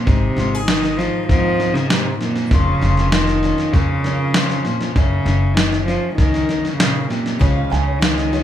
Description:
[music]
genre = indie folk with a building arrangement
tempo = 98 BPM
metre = 4/4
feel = straight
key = Bb minor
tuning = A4 = 440 Hz
[part]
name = warm cello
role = melody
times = 0.0-8.4 s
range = Bb2 to F3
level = -20 LUFS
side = equal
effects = none
[part]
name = fingerpicked steel-string acoustic guitar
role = accompaniment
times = 0.0-7.4 s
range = F2 to Ab4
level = -25 LUFS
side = left 4 dB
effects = none
[part]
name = upright bass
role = bass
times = 0.1-8.4 s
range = F1 to F2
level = -21 LUFS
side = equal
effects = none
[part]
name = dusty soul sampler-style drum kit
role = drums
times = 0.1-8.4 s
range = kick drum, snare drum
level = -19 LUFS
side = equal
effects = none
[part]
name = picked steel-string acoustic guitar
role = accompaniment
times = 7.4-8.4 s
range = Db3 to F4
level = -27 LUFS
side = left 4 dB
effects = none
[part]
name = dark upright piano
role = arpeggios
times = 7.4-8.4 s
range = Db5 to Ab5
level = -25 LUFS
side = right 3 dB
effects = none
[sound]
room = moderate large studio reverb, RT60 1.1 s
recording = band playing live in one room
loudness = -15 LUFS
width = side -11 dB against mid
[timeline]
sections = 0.0-8.4 A section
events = none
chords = 0.1 Ab; 2.5 Bbm/F; 5.0 Gb; 7.4 Db

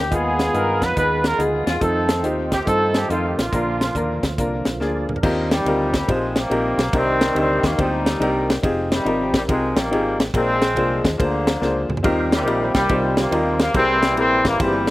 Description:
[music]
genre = uptempo gospel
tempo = 141 BPM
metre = 4/4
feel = swing 66% on 8ths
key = Eb major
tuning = A4 = 439 Hz
[part]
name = warm horn section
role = melody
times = 0.0-14.9 s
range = Bb2 to Cb5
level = -21 LUFS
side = left 1 dB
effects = slapback echo
[part]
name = warm trumpet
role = melody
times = 0.0-4.2 s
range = F4 to Cb5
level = -24 LUFS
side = right 3 dB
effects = slapback echo
[part]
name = percussive tonewheel organ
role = sustained chords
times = 0.0-5.5, 12.1-14.9 s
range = D3 to D5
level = -29 LUFS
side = right 3 dB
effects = slow rotary speaker, overdrive, chorus vibrato
[part]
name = deep dub fingered electric bass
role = bass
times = 0.0-14.9 s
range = F1 to G2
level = -27 LUFS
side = equal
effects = none
[part]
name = clear upright piano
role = accompaniment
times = 0.1-14.9 s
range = Bb2 to C5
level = -23 LUFS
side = left 1 dB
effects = none
[part]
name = tight funk drum kit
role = drums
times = 0.1-14.9 s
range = crash cymbal, hi-hat, kick drum, ride cymbal, snare drum, toms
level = -22 LUFS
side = equal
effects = none
[sound]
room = little or no reverb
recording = recorded outdoors, with no room sound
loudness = -17 LUFS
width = side -17 dB against mid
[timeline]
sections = 0.0-5.2 A section; 5.2-14.9 B section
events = drum fill 4.8-5.2, 11.6-12.0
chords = 0.1 Abm6/Eb; 1.8 F7; 3.5 Bb; 5.2 Eb69; 6.9 Cm9; 8.6 Fm9; 10.3 Bb7; 12.0 Eb69; 13.7 C7b13

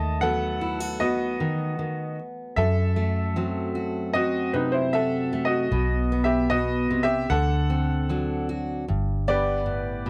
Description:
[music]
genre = acoustic folk-pop ballad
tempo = 76 BPM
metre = 4/4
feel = straight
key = unclear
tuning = A4 = 440 Hz
[part]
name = bright upright piano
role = melody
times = 0.0-10.1 s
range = D#4 to A5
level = -29 LUFS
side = equal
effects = none
[part]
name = fingerpicked steel-string acoustic guitar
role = accompaniment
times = 0.0-10.1 s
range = F#2 to F#4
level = -29 LUFS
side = equal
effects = none
[part]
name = vintage muted fingered electric bass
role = bass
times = 0.0-10.1 s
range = G1 to F#2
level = -30 LUFS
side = equal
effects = none
[sound]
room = light reverb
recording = dry, close 1970s-style studio recording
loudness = -25 LUFS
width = mono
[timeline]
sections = 0.0-8.9 A section; 8.9-10.1 B section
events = none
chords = 0.0 B7/D#; 2.6 F#dim; 5.7 B5; 7.3 D7; 8.9 G

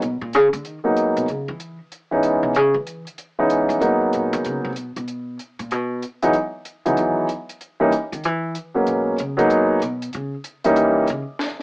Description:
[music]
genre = jazz piano trio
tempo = 190 BPM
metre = 4/4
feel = swing 64% on 8ths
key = G# minor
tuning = A4 = 441 Hz
[part]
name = upright bass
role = bass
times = 0.0-11.2 s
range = F#2 to E3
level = -23 LUFS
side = equal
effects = none
[part]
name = compact cocktail drum kit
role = drums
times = 0.0-11.6 s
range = hi-hat, snare drum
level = -33 LUFS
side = equal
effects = none
[part]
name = warm grand piano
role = melody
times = 0.8-11.1 s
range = E3 to D#4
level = -17 LUFS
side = equal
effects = none
[sound]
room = moderate club reverb, RT60 0.7 s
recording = AM radio sound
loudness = -18 LUFS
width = side -24 dB against mid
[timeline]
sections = 0.0-11.4 A section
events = upright bass solo 0.0-11.4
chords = 0.0 G#m9; 1.3 C#m9; 3.8 G#m9; 6.3 Emaj7; 7.6 D#5; 8.9 G#m9; 10.8 D#7b9

